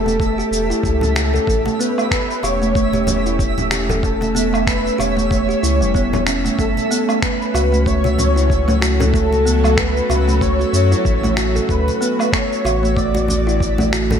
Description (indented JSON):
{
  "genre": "organic downtempo",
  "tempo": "94 BPM",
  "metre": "4/4",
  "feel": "swing 57% on 16ths",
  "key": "A mixolydian",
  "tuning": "A4 = 441 Hz",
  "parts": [
    { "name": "breathy flute-like synth lead", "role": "melody", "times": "0.0-13.9 s", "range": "A4 to D5", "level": "-22 LUFS", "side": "left 1 dB", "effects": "tremolo, ensemble chorus, cassette tape, ping-pong delay" },
    { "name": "bowed-like drone", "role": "sustained chords", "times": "0.0-14.2 s", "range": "D3 to A4", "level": "-26 LUFS", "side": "equal", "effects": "built-in reverb, sidechain pumping" },
    { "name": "kalimba", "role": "arpeggios", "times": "0.0-14.2 s", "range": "G3 to A4", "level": "-21 LUFS", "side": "right 2 dB", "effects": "ping-pong delay" },
    { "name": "warm sub bass", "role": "bass", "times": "0.0-14.2 s", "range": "E1 to F#2", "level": "-20 LUFS", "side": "left 1 dB", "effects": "sidechain pumping" },
    { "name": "twinkling granular texture", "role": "texture", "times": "0.0-14.2 s", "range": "E5", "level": "-30 LUFS", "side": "right 5 dB", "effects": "built-in reverb" },
    { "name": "electronic shaker, finger snaps and woodblock", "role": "drums", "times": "0.1-14.2 s", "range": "none", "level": "-24 LUFS", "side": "right 1 dB", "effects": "gated reverb" },
    { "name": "congas", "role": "percussion", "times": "0.1-14.2 s", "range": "none", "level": "-27 LUFS", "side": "left 2 dB", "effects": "none" },
    { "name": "electronic kick drum", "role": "drums", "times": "0.2-13.8 s", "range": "none", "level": "-21 LUFS", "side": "left 1 dB", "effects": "none" }
  ],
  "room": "moderate lush hall reverb, RT60 2.2 s",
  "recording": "bright 1980s-style digital production",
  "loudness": "-15 LUFS",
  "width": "side -8 dB against mid",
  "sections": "0.0-14.2 A section",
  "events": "none",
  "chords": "0.0 A7; 6.6 F#m7; 11.7 D6"
}